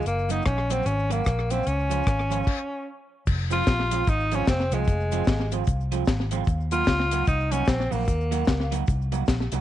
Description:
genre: ska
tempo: 150 BPM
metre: 4/4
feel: swing 61% on 8ths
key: unclear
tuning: A4 = 444 Hz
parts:
  - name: breathy tenor saxophone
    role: melody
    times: 0.0-8.7 s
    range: Ab3 to F4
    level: -27 LUFS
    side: left 1 dB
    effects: none
  - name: vintage muted fingered electric bass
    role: bass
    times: 0.1-9.6 s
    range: F1 to Eb2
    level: -26 LUFS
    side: equal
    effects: none
  - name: deep reggae drum kit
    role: drums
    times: 0.1-9.6 s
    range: crash cymbal, hi-hat, kick drum, rim click, snare drum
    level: -25 LUFS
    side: left 1 dB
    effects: slapback echo
  - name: cabasa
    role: percussion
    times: 0.1-9.6 s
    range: none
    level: -47 LUFS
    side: left 18 dB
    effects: none
  - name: electric guitar through a small old amp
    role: accompaniment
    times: 0.3-9.6 s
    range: F3 to Gb4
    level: -32 LUFS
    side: right 14 dB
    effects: none
room: light reverb, small room ambience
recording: 1960s-style stereo with parts hard left and right, nothing above 10.4 kHz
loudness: -22 LUFS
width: side -12 dB against mid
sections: 0.0-3.3 A section; 3.3-9.6 B section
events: stop 2.5-3.3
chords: 0.1 Gb; 1.7 Db; 3.3 Fm; 6.5 Ebm

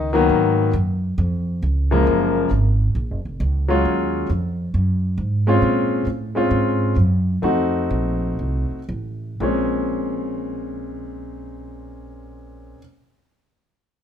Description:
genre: jazz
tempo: 115-135 BPM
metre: 4/4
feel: swing 65% on 8ths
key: Bb minor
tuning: A4 = 440 Hz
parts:
  - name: clear grand piano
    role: melody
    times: 0.0-12.8 s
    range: Gb2 to Gb4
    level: -20 LUFS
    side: left 2 dB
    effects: none
  - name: upright bass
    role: bass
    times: 0.0-12.7 s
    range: F1 to Bb2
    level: -21 LUFS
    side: right 1 dB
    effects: none
room: moderate large studio reverb, RT60 1.1 s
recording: minimal, uncompressed stereo recording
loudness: -18 LUFS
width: side -9 dB against mid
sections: 0.0-2.1 A section; 2.1-9.4 B section; 9.4-13.6 C section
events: slowing down 5.6-9.4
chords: 0.3 Abm7; 1.2 Db; 2.1 Gbmaj9; 3.8 Ebm11; 5.6 Bbm9; 7.4 F7b9; 9.4 Bbm9

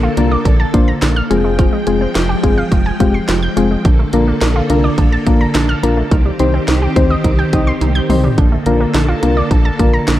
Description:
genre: synth-pop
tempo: 106 BPM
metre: 4/4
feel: straight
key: Bb major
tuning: A4 = 440 Hz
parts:
  - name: string machine, violins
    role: sustained chords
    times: 0.0-10.2 s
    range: D3 to G5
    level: -19 LUFS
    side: equal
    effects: ensemble chorus, shimmer reverb
  - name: analog pluck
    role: arpeggios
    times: 0.0-10.1 s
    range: D3 to G6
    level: -21 LUFS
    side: right 4 dB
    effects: chorus, tape echo, shimmer reverb
  - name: round analog bass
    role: bass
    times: 0.0-10.2 s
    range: F1 to D2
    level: -17 LUFS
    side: equal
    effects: none
  - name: soft electric-piano-like synth keys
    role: accompaniment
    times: 0.2-9.9 s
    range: Ab3 to Eb5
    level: -18 LUFS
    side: left 3 dB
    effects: chorus, shimmer reverb
  - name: house drum kit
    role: drums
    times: 0.2-10.2 s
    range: handclaps, hi-hat, kick drum, snare drum, toms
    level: -16 LUFS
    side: equal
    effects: none
room: light reverb, digital ambience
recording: dark, warm production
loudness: -11 LUFS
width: side -14 dB against mid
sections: 0.0-10.2 A section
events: drum fill 7.8-8.4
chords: 0.0 Bbmaj7; 1.3 Fmadd9; 3.9 Bbmaj7; 6.1 Cm; 8.4 Bbmaj7

